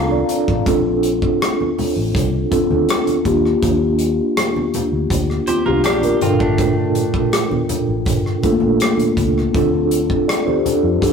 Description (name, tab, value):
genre	lush 1970s-style soul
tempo	81 BPM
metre	4/4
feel	straight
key	unclear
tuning	A4 = 441 Hz
part	mellow tine electric piano	accompaniment	0.0-11.1 s	Bb2 to Bb5	-16 LUFS	equal	medium stereo tremolo
part	vintage muted fingered electric bass	bass	0.0-11.1 s	G1 to F2	-23 LUFS	equal	none
part	congas	percussion	0.1-10.8 s	none	-29 LUFS	right 1 dB	none
part	modern studio drum kit	drums	0.3-11.1 s	hi-hat, kick drum, rim click	-22 LUFS	equal	none
part	semi-hollow electric guitar	riff	5.5-7.5 s	A3 to C5	-26 LUFS	right 4 dB	spring reverb
room	moderate stone room reverb, RT60 1.2 s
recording	rough rehearsal-room recording, warm saturation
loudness	-15 LUFS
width	side -6 dB against mid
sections	0.0-11.1 A section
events	tine electric piano fill 0.0-0.7, 5.5-6.6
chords	0.0 Dm7; 3.3 Ebmaj9; 6.2 Gm9; 9.5 Dm7